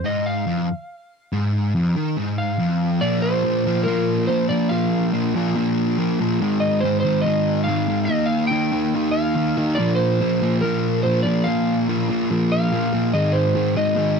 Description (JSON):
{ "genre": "rock", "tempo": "142 BPM", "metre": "4/4", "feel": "straight", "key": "unclear", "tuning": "A4 = 436 Hz", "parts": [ { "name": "electric slide guitar", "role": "melody", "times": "0.0-14.2 s", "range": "Bb4 to G5", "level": "-24 LUFS", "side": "right 1 dB", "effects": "none" }, { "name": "fuzz guitar", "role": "riff", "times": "0.0-14.2 s", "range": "F2 to Eb4", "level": "-19 LUFS", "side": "equal", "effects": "distortion" } ], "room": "moderate booth ambience, RT60 0.2 s", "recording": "cassette tape", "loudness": "-18 LUFS", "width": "side -5 dB against mid", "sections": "0.0-3.0 A section; 3.0-14.2 B section", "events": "none", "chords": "0.0 Fm; 3.0 Bb5; 6.4 Ab5; 8.1 Eb; 9.8 Bb5; 13.1 Ab" }